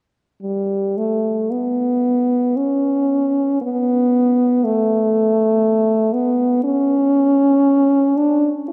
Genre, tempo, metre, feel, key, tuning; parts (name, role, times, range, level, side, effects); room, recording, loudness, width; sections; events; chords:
classical, free, expressive piece for unaccompanied French horn; 54-62 BPM; 3/4; rubato; A4 = 439 Hz
mellow French horn; solo; 0.4-8.7 s; G3 to E4; -17 LUFS; equal
moderate church reverb, RT60 3.7 s; -17 LUFS; mono
0.4-8.7 A section